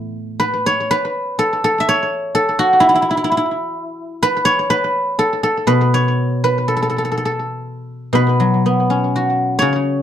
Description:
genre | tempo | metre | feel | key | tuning
chinese traditional, Chinese solo plucked strings | 62 BPM | 2/4 | rubato | A gong mode | A4 = 440 Hz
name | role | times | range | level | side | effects
guzheng | solo | 0.0-10.0 s | A2 to E5 | -15 LUFS | equal | slapback echo
room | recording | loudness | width
light reverb | dark, warm production | -14 LUFS | side -10 dB against mid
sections
0.0-10.0 A section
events
none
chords
none

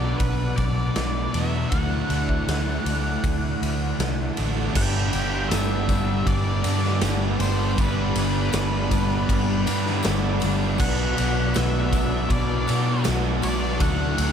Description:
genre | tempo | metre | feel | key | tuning
rock, shoegaze and dream pop | 79 BPM | 4/4 | straight | G major | A4 = 436 Hz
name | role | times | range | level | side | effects
octave-fuzz lead guitar | melody | 0.0-14.3 s | B4 to G5 | -31 LUFS | left 1 dB | distortion, tape echo
lush unison pad | sustained chords | 0.0-14.3 s | D3 to F#5 | -33 LUFS | equal | chorus
overdriven electric guitar | riff | 0.0-14.3 s | G2 to D4 | -29 LUFS | right 8 dB | reverse reverb
thick fuzz guitar | riff | 0.0-14.3 s | G2 to D4 | -28 LUFS | left 7 dB | distortion, ensemble chorus
vintage muted fingered electric bass | bass | 0.0-14.3 s | G1 to B2 | -26 LUFS | equal | none
raw garage drum kit | drums | 0.2-14.3 s | crash cymbal, kick drum, ride cymbal, snare drum | -27 LUFS | equal | none
raw garage guitar | riff | 4.8-14.3 s | G2 to D4 | -32 LUFS | right 1 dB | overdrive
tambourine | percussion | 4.8-14.3 s | none | -42 LUFS | left 13 dB | none
room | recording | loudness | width
moderate church reverb, RT60 3.0 s | dreamy mix soaked in reverb | -20 LUFS | side -8 dB against mid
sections
0.0-4.8 A section; 4.8-14.3 B section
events
none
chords
0.0 Bm; 1.7 Dadd9; 4.8 G; 10.8 Bm; 13.8 D

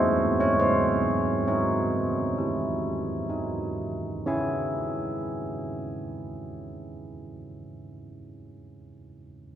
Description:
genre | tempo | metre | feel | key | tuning
classical, tune for church bells | 62-73 BPM | 4/4 | straight | C# minor | A4 = 440 Hz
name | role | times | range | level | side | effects
carillon bells | solo | 0.0-8.9 s | G#3 to G#5 | -26 LUFS | right 1 dB | none
room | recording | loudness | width
wet cathedral reverb, RT60 4.5 s | heard from further back in the room | -25 LUFS | side -10 dB against mid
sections
0.0-4.3 A section; 4.3-8.1 B section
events
slowing down 0.0-4.3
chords
0.0 N.C.; 0.6 C#m

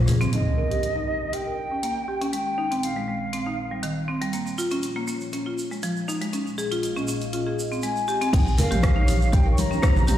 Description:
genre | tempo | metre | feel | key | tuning
afro house | 120 BPM | 4/4 | swing 53% on 16ths | unclear | A4 = 440 Hz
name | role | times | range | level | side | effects
warm sub bass | bass | 0.0-0.3, 8.3-10.2 s | Bb1 to Bb2 | -22 LUFS | equal | sidechain pumping
buzzing marimba with hard mallets | arpeggios | 0.1-10.2 s | Eb3 to Bb4 | -28 LUFS | equal | sidechain pumping, low-pass filter, digital delay
deep house drum kit | drums | 0.1-10.2 s | crash cymbal, hi-hat, rim click, toms | -32 LUFS | equal | none
congas | percussion | 0.1-0.3, 8.3-10.1 s | none | -28 LUFS | left 2 dB | none
tube shaker | percussion | 0.1-0.3, 4.3-10.2 s | none | -37 LUFS | right 3 dB | none
mellow concert flute | melody | 0.3-4.1, 7.8-10.2 s | Eb5 to Db6 | -28 LUFS | equal | vintage 12-bit sampler grit, digital delay
dark analog pad | sustained chords | 0.3-10.2 s | Bb2 to F5 | -34 LUFS | equal | chorus, sidechain pumping
impact | sound effects | 0.3-2.3 s | none | -28 LUFS | equal | none
electronic kick drum | drums | 8.3-9.9 s | none | -20 LUFS | equal | none
room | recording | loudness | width
light reverb | played on a big sound system in a bare room, large studio reverb | -22 LUFS | side -11 dB against mid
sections
0.3-8.3 A section; 8.3-10.2 B section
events
impact 0.3-2.3; filter sweep on marimba 0.3-8.3; filter sweep on analog synth pad 0.3-8.3; drop 8.3-10.2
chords
0.3 Eb/Bb; 2.3 Abmaj7/Bb; 4.3 Bbmadd9; 6.3 Db/Bb; 8.3 Eb7/Bb

